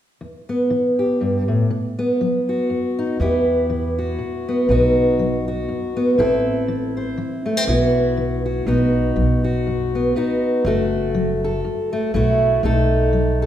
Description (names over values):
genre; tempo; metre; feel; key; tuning
folk; 121 BPM; 3/4; swing 56% on 8ths; E harmonic minor; A4 = 440 Hz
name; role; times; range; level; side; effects
fingerpicked steel-string acoustic guitar; accompaniment; 0.2-13.5 s; E2 to C5; -18 LUFS; equal; none
upright bass; bass; 3.2-13.5 s; F#1 to E2; -22 LUFS; equal; none
room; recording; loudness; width
wet recital hall reverb, RT60 1.4 s; recorded in a church or concert hall; -17 LUFS; side -11 dB against mid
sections
0.2-3.2 A section; 3.2-13.5 B section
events
none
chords
0.2 Em; 1.7 B; 3.2 Em; 4.7 B; 6.2 Am; 7.7 Bsus4; 8.7 B; 10.6 F#m; 12.1 B7sus4; 12.6 B7